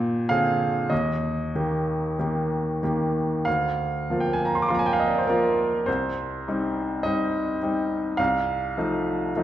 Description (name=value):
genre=classical, romantic nocturne for solo piano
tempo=46-53 BPM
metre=4/4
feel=rubato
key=Eb major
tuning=A4 = 444 Hz
part: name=clear baby grand piano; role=solo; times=0.0-9.4 s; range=C2 to D6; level=-22 LUFS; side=equal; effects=none
room=wet recital hall reverb, RT60 1.8 s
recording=dark, warm production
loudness=-22 LUFS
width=side -12 dB against mid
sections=0.0-9.4 A section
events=none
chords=0.0 Bb9; 0.9 Eb; 3.5 Bb/D; 5.9 Cm; 8.2 F7/C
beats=0.91 2.18 | 3.47 4.69 5.87 7.04 | 8.19 9.35